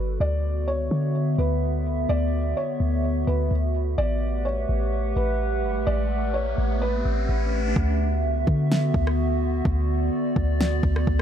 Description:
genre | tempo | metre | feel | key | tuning
hip hop, atmospheric cloud-rap | 127 BPM | 4/4 | half-time | D major | A4 = 439 Hz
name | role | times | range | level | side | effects
felt-muted upright piano | melody | 0.0-7.7 s | B4 to D5 | -31 LUFS | right 1 dB | low-pass filter, digital delay
warbly tape-like pad | sustained chords | 0.0-11.2 s | D3 to F#5 | -27 LUFS | equal | chorus, built-in reverb, sidechain pumping
clean 808-style bass | bass | 0.0-11.2 s | G1 to D3 | -24 LUFS | equal | none
riser | sound effects | 5.4-7.8 s | none | -35 LUFS | equal | none
smooth R&B drum kit | drums | 7.8-11.2 s | kick drum, rim click, snare drum | -24 LUFS | equal | overdrive
room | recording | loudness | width
little or no reverb | none | -22 LUFS | side -9 dB against mid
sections
0.0-7.8 A section; 7.8-11.2 B section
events
riser 5.4-7.8; hi-hats muted 7.8-11.2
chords
0.2 D69; 4.0 A13; 7.8 D69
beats
| 0.20 0.68 1.15 1.62 | 2.09 2.57 3.04 3.51 | 3.98 4.46 4.93 5.40 | 5.87 6.35 6.82 7.29 | 7.76 8.23 8.71 9.18 | 9.65 10.12 10.60 11.07

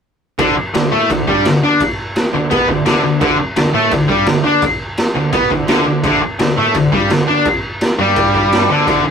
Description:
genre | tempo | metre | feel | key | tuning
punk rock | 170 BPM | 4/4 | straight | unclear | A4 = 440 Hz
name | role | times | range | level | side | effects
distorted electric guitar | riff | 0.4-9.1 s | D3 to D4 | -20 LUFS | right 2 dB | distortion
fuzz guitar | riff | 0.4-9.1 s | D3 to D4 | -18 LUFS | left 1 dB | distortion
tight distorted guitar | riff | 0.4-9.1 s | D3 to D4 | -17 LUFS | left 3 dB | distortion
fuzz picked electric bass | bass | 0.4-9.1 s | D2 to D3 | -21 LUFS | right 1 dB | overdrive
raw garage drum kit | drums | 0.4-9.0 s | crash cymbal, kick drum, snare drum | -17 LUFS | equal | none
room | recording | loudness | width
moderate booth ambience, RT60 0.3 s | rough rehearsal-room recording, tube saturation | -12 LUFS | side -7 dB against mid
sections
0.4-9.1 A section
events
none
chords
0.4 D5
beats
| 0.39 0.74 1.10 1.45 | 1.80 2.16 2.51 2.86 | 3.22 3.57 3.92 4.28 | 4.63 4.98 5.34 5.69 | 6.04 6.40 6.75 7.10 | 7.46 7.81 8.16 8.52 | 8.87

